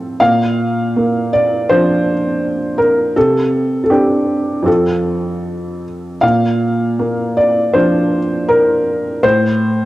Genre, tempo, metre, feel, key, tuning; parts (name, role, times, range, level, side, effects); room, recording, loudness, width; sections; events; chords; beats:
neoclassical minimalist piano; 80 BPM; 4/4; rubato; Bb major; A4 = 441 Hz
felt-muted upright piano; solo; 0.0-9.9 s; F2 to F5; -13 LUFS; equal; cassette tape
light reverb, studio reverb; home recording on cassette; -12 LUFS; side -16 dB against mid
0.0-6.2 A section; 6.2-9.9 A section
0.2 Bb; 3.2 Csus2; 4.7 F; 6.2 Bb; 9.2 F/A (rootless)
| 0.20 0.94 1.68 2.42 | 3.15 3.90 4.67 5.45 | 6.23 6.99 7.74 8.49 | 9.23